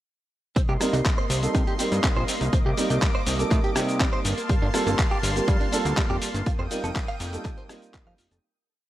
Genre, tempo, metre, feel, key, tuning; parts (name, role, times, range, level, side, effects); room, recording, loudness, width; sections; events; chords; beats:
nu-disco, nu disco; 122 BPM; 4/4; straight; C dorian; A4 = 440 Hz
lush unison pad; sustained chords; 0.6-8.4 s; Bb3 to Eb6; -32 LUFS; right 1 dB; chorus, sidechain pumping
direct-recorded clean electric guitar; riff; 0.6-8.3 s; G3 to F5; -32 LUFS; right 3 dB; ensemble chorus
fat analog bass; bass; 0.6-8.4 s; F1 to C3; -27 LUFS; equal
dusty soul sampler-style drum kit; drums; 0.6-8.4 s; cabasa, handclaps, hi-hat, rim click; -30 LUFS; left 1 dB; overdrive
electronic kick drum; drums; 0.6-8.0 s; -24 LUFS; equal
dark baby grand piano; accompaniment; 0.8-8.4 s; G3 to Bb4; -29 LUFS; right 2 dB; sidechain pumping, analog delay
little or no reverb; dry, gritty hardware recording, transformer saturation; -21 LUFS; side -14 dB against mid
0.6-8.4 drop
drop 0.6-8.4; fade-out 5.8-8.4
0.6 Cm7; 4.2 Gm11; 6.5 F9sus4
| 0.56 1.05 1.54 2.04 | 2.53 3.02 3.51 4.00 | 4.50 4.99 5.48 5.97 | 6.46 6.96 7.45 7.94